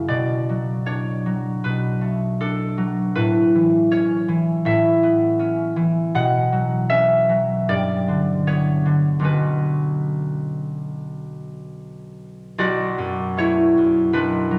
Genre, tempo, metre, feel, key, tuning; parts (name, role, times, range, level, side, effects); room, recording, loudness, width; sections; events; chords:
classical, solo harp piece; 71-81 BPM; 4/4; rubato; B minor; A4 = 442 Hz
concert harp; solo; 0.0-14.6 s; B1 to F#5; -20 LUFS; equal
wet recital hall reverb, RT60 1.8 s; -20 LUFS; mono
0.0-12.6 A section; 12.6-14.6 A section
0.1 Bm7; 3.2 A69; 6.2 Bsus2; 7.7 Gmaj7; 9.3 Bmadd9; 12.6 Bm7